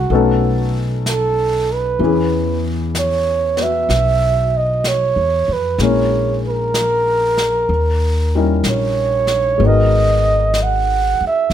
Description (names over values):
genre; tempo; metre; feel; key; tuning
jazz ballad; 63 BPM; 4/4; swing 68% on 8ths; G# minor; A4 = 440 Hz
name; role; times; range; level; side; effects
breathy flugelhorn; melody; 0.0-11.5 s; F#4 to F#5; -17 LUFS; right 4 dB; none
warm baby grand piano; accompaniment; 0.0-11.5 s; D#3 to A#4; -21 LUFS; left 6 dB; none
upright bass; bass; 0.0-11.5 s; F1 to E#2; -19 LUFS; equal; none
jazz brush drum kit; drums; 0.1-11.5 s; brushed snare drum, hi-hat, snare drum; -27 LUFS; equal; none
room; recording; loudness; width
little or no reverb; none; -14 LUFS; side -10 dB against mid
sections
0.0-11.5 A section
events
none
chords
0.1 B9; 2.0 E69; 5.8 A#m7b5; 7.7 D#7b9; 9.6 G#m9